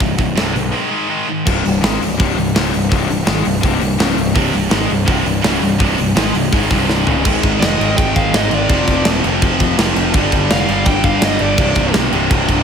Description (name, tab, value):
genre	heavy metal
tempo	166 BPM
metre	4/4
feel	straight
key	C minor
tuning	A4 = 441 Hz
part	heavy high-gain guitar	riff	0.0-12.6 s	C2 to Ab3	-20 LUFS	left 11 dB	distortion
part	heavy high-gain guitar	riff	0.0-1.4, 4.4-12.6 s	C2 to Ab3	-20 LUFS	right 11 dB	distortion, slapback echo
part	fuzz picked electric bass	bass	0.0-12.6 s	C1 to B1	-20 LUFS	equal	overdrive
part	tight metal drum kit	drums	0.0-12.6 s	crash cymbal, hi-hat, kick drum, snare drum, toms	-17 LUFS	equal	none
part	fuzz guitar	riff	1.5-12.6 s	C2 to Ab3	-21 LUFS	right 1 dB	distortion, slapback echo
part	high-gain lead guitar	melody	7.6-11.9 s	D5 to G5	-21 LUFS	right 1 dB	distortion, slapback echo, ping-pong delay
room	light reverb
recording	faint mains hum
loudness	-13 LUFS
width	side -7 dB against mid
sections	0.0-1.5 A section; 1.5-7.3 B section; 7.3-12.6 C section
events	break 0.7-1.5; drum fill 6.9-7.3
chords	0.0 C5; 0.7 Ab5; 1.5 Cm; 7.3 Ab5; 8.7 F5; 10.1 G5; 11.6 C5